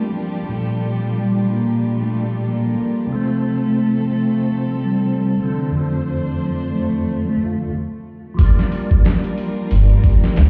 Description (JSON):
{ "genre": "trip hop", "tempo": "91 BPM", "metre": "4/4", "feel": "swing 58% on 16ths", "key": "G minor", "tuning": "A4 = 440 Hz", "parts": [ { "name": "dark cello", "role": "melody", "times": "0.0-7.7 s", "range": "D3 to Bb3", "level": "-24 LUFS", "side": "equal", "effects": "tape echo" }, { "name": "percussive tonewheel organ", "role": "accompaniment", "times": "0.0-10.5 s", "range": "F2 to F4", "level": "-24 LUFS", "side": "equal", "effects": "overdrive, chorus vibrato, fast rotary speaker, tremolo" }, { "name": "clear studio violin section", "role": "sustained chords", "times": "0.0-10.5 s", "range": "G3 to C5", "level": "-36 LUFS", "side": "equal", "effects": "vintage 12-bit sampler grit" }, { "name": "backwards swelling texture", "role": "texture", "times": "0.3-7.7 s", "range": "A4 to A5", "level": "-43 LUFS", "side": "equal", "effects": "none" }, { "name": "trip hop sampler-style drum kit", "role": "drums", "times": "8.4-10.5 s", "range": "hi-hat, kick drum, snare drum", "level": "-16 LUFS", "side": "equal", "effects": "none" }, { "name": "upright bass", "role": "bass", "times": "9.7-10.5 s", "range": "G1 to D2", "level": "-15 LUFS", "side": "equal", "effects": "none" } ], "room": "light reverb, small room ambience", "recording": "heard muffled through a wall, club reverb, EQ", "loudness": "-19 LUFS", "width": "mono", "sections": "0.0-8.4 A section; 8.4-10.5 B section", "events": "stop 7.7-8.4", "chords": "0.0 Gm7; 3.1 F; 5.8 Dm7/F; 8.4 Gm7", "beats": "| 0.47 1.14 1.79 2.45 | 3.11 3.77 4.43 5.09 | 5.75 6.41 7.07 7.73 | 8.39 9.05 9.71 10.37" }